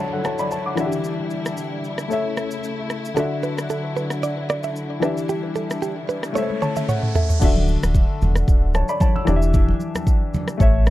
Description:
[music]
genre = afrobeats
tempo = 113 BPM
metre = 4/4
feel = swing 55% on 16ths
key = D major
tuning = A4 = 440 Hz
[part]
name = warm baby grand piano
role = accompaniment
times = 0.0-10.9 s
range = D3 to E6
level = -24 LUFS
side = left 3 dB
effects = none
[part]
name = dark studio string section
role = sustained chords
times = 0.0-7.4 s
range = C#3 to E4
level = -30 LUFS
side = equal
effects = none
[part]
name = downlifter and riser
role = sound effects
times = 0.0-7.4 s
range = none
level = -36 LUFS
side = right 2 dB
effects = none
[part]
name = afro-pop drum kit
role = drums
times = 0.2-10.9 s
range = crash cymbal, kick drum, rim click, shaker, toms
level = -20 LUFS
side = equal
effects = none
[part]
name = direct-recorded clean electric guitar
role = riff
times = 3.2-7.3 s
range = G4 to E5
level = -26 LUFS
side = right 6 dB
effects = ping-pong delay
[part]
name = sub bass with octave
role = bass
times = 7.4-10.9 s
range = D1 to A1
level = -19 LUFS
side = equal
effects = none
[part]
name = congas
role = percussion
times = 7.4-10.9 s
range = none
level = -27 LUFS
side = right 1 dB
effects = none
[sound]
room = little or no reverb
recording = dark, warm production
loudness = -19 LUFS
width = side -15 dB against mid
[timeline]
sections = 0.0-7.4 A section; 7.4-10.9 B section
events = riser 6.1-7.4; drum fill 6.4-7.4; grand piano fill 6.4-7.4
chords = 0.0 Dadd9; 0.8 Em7; 2.1 A; 3.2 Dadd9; 5.0 Em7; 6.4 A; 7.4 Dadd9; 9.3 Em7

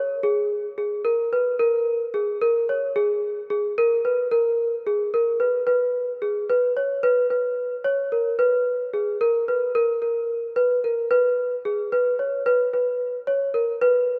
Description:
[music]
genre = progressive instrumental, progressive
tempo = 221 BPM (eighths)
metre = 5/8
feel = straight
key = unclear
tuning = A4 = 440 Hz
[part]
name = celesta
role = solo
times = 0.0-14.2 s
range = G#4 to C#5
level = -23 LUFS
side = equal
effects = none
[sound]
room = moderate lush hall reverb, RT60 2.7 s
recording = rough home demo mix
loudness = -23 LUFS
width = mono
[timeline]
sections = 0.0-5.7 A section; 5.7-14.2 B section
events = none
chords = none

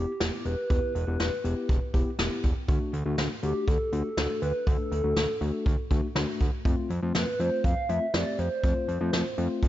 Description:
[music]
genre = synth-pop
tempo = 121 BPM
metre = 4/4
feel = straight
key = unclear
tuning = A4 = 440 Hz
[part]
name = hollow clarinet-like synth lead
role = melody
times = 0.0-9.7 s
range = G4 to F5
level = -31 LUFS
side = equal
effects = chorus
[part]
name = mellow tine electric piano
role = accompaniment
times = 0.0-9.7 s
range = A3 to A4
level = -33 LUFS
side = left 3 dB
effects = none
[part]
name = fat analog bass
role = bass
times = 0.0-9.7 s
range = E1 to F2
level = -30 LUFS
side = equal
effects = none
[part]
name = vintage brush drum kit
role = drums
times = 0.2-9.7 s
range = hi-hat, kick drum, snare drum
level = -28 LUFS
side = equal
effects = none
[sound]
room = light reverb, small room ambience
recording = nothing above 7.6 kHz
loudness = -25 LUFS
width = side -13 dB against mid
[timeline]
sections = 0.0-9.7 A section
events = none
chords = 0.0 Em; 2.7 D; 6.7 F

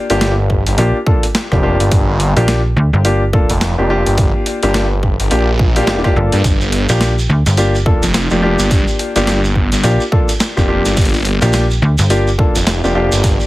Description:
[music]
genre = glitch hop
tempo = 106 BPM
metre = 4/4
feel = swing 60% on 16ths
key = G minor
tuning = A4 = 439 Hz
[part]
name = warm grand piano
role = stabs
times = 0.0-13.5 s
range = Bb3 to A4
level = -17 LUFS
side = left 1 dB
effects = sidechain pumping, ping-pong delay
[part]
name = phased detuned saw bass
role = bass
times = 0.1-13.4 s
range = F1 to G2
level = -15 LUFS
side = equal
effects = phaser
[part]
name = boom bap sampler-style drum kit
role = drums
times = 0.1-13.4 s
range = hi-hat, rim click, snare drum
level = -20 LUFS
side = equal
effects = studio reverb
[part]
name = electronic kick drum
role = drums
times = 0.5-13.4 s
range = none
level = -15 LUFS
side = equal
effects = studio reverb
[part]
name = slap-like FM bass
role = bass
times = 0.8-12.5 s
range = G1 to D2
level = -13 LUFS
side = equal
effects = tube saturation
[part]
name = shekere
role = percussion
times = 6.4-13.5 s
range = none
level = -24 LUFS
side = right 3 dB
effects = none
[sound]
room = little or no reverb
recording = heavily compressed radio sound, multiband compression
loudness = -11 LUFS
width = side -17 dB against mid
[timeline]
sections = 0.0-13.5 A section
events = none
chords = 0.0 Gm7

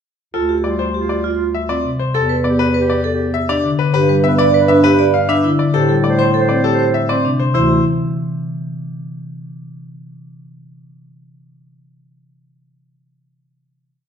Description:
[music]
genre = classical, minimalist pattern music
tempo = 100 BPM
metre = 3/4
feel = straight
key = D dorian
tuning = A4 = 439 Hz
[part]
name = bright grand piano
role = melody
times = 0.3-7.8 s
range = A4 to F5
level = -20 LUFS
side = left 6 dB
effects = none
[part]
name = mellow clarinet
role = second line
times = 0.3-7.3 s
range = F4 to C5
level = -24 LUFS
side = right 3 dB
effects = none
[part]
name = vibraphone with medium hard mallets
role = arpeggios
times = 0.3-7.8 s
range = C4 to D5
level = -18 LUFS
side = right 5 dB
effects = none
[part]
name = mellow bass clarinet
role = bass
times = 0.3-7.8 s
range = D2 to A2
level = -20 LUFS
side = left 2 dB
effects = none
[part]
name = marimba with medium mallets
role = accompaniment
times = 0.6-7.8 s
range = C3 to D4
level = -19 LUFS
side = left 1 dB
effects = none
[sound]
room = wet large studio reverb, RT60 1.3 s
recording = dark, warm production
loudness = -13 LUFS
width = side -7 dB against mid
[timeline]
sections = 0.3-7.5 A section; 7.5-9.3 final chord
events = none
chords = 0.3 Dm7; 2.1 Em7; 3.9 G; 5.7 Am7; 7.5 Dsus2

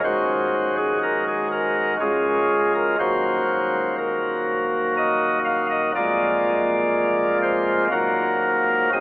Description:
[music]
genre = classical, chorale-style piece for pipe organ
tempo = 61 BPM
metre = 3/4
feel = straight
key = unclear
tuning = A4 = 441 Hz
[part]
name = pipe organ, sparkling flutes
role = solo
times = 0.0-9.0 s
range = Db1 to F5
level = -18 LUFS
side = equal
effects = none
[sound]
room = wet cathedral reverb, RT60 6.9 s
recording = telephone sound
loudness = -18 LUFS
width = side -20 dB against mid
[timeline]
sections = 0.0-9.0 A section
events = none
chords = 0.0 Ab5/Eb; 2.0 Db; 3.0 Ebm; 6.0 Bb7/F; 7.9 Ebm

